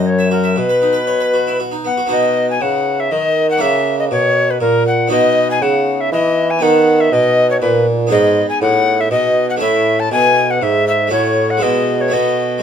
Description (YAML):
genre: classical, baroque-style sonata movement with continuo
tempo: 120 BPM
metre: 3/4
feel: straight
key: B major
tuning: A4 = 440 Hz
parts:
  - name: alto recorder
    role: melody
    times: 0.0-12.6 s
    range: A#4 to A5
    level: -16 LUFS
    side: left 3 dB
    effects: none
  - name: harpsichord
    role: accompaniment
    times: 0.0-12.6 s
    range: F#2 to E5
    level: -18 LUFS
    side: equal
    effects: none
  - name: mellow bassoon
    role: bass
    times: 0.0-12.6 s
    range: F#2 to E3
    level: -17 LUFS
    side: right 2 dB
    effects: none
room: light reverb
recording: minimal, uncompressed stereo recording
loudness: -12 LUFS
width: side -8 dB against mid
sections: 0.0-2.1 A section; 2.1-12.6 B section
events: none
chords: 0.1 F#7; 0.6 B; 3.6 F#; 5.1 B; 8.1 G#m; 9.6 A; 11.1 F#m/A; 11.6 E/B; 12.1 B7